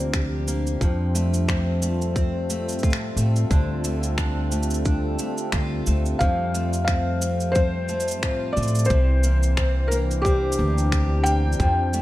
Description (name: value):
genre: folktronica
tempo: 89 BPM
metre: 4/4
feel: swing 56% on 16ths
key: F major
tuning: A4 = 440 Hz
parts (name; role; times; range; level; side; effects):
- warm analog pad; sustained chords; 0.0-12.0 s; E3 to A4; -31 LUFS; left 1 dB; lush chorus
- picked twelve-string acoustic guitar; arpeggios; 0.0-12.0 s; F2 to G4; -29 LUFS; equal; low-pass filter, tape echo
- upright bass; bass; 0.0-12.0 s; C2 to A2; -23 LUFS; equal; none
- electronic finger snaps and shaker; drums; 0.1-12.0 s; none; -31 LUFS; equal; none
- electronic kick drum; drums; 0.1-11.7 s; none; -23 LUFS; equal; none
- felt-muted upright piano; melody; 6.2-12.0 s; G4 to G5; -25 LUFS; left 1 dB; tape echo
room: small room ambience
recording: none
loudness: -20 LUFS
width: side -16 dB against mid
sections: 0.0-12.0 A section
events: none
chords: 0.0 C5; 0.8 F; 3.5 Dm; 6.2 F; 8.9 C7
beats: 0.14 | 0.81 1.48 2.16 2.83 | 3.51 4.18 4.86 5.53 | 6.20 6.88 7.55 8.22 | 8.90 9.57 10.25 10.92 | 11.60